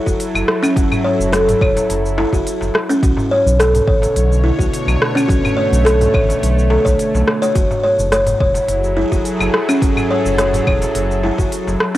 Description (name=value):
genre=organic downtempo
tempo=106 BPM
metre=4/4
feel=straight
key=F# minor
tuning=A4 = 439 Hz
part: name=bowed-like drone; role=sustained chords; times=0.0-12.0 s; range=B2 to C#5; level=-21 LUFS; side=equal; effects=built-in reverb, sidechain pumping, cassette tape
part: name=buzzing kalimba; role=arpeggios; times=0.0-12.0 s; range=C#4 to C#5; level=-17 LUFS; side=equal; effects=cassette tape, tape echo
part: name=round analog bass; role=bass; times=0.1-11.8 s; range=E1 to B1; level=-18 LUFS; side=equal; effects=tube saturation, sidechain pumping
part: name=electronic kick drum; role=drums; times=0.1-11.5 s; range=none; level=-18 LUFS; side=equal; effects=cassette tape
part: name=organic electronic drum kit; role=drums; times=0.1-12.0 s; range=claves, hi-hat, rim click, shaker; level=-21 LUFS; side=equal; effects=cassette tape
part: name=darbuka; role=percussion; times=0.1-11.9 s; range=none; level=-27 LUFS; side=left 1 dB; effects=none
room=moderate spring reverb, RT60 1.9 s, digital ambience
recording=home recording on cassette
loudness=-13 LUFS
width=side -14 dB against mid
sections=0.0-12.0 A section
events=none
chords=0.0 F#m7; 3.0 Bm9; 7.6 F#m9